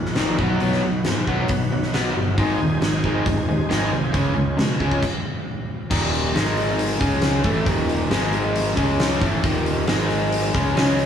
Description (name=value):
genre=classic rock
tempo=136 BPM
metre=4/4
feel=straight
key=unclear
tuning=A4 = 440 Hz
part: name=tonewheel organ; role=sustained chords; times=0.0-5.0 s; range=Eb4 to Ab5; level=-30 LUFS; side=left 1 dB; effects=slow rotary speaker, overdrive, chorus vibrato
part: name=overdriven semi-hollow guitar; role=riff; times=0.0-11.1 s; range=Eb2 to Db4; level=-22 LUFS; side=equal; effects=none
part: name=fuzz picked electric bass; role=bass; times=0.0-11.1 s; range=Eb1 to Cb3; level=-25 LUFS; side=equal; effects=overdrive
part: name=huge arena drum kit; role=drums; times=0.1-11.1 s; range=crash cymbal, hi-hat, kick drum, snare drum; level=-23 LUFS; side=equal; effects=none
room=moderate stone room reverb, RT60 1.0 s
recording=band playing live in one room, studio reverb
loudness=-18 LUFS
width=side -8 dB against mid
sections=0.0-5.9 A section; 5.9-11.1 B section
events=stop 5.0-5.9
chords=0.4 B; 2.4 Ab; 4.1 Db; 5.0 N.C.; 5.9 Eb5; 6.4 Ab5; 7.0 Db5; 7.5 Eb5; 8.1 Ab5; 8.8 Db5; 9.2 Eb5; 9.9 Ab5; 10.6 Db5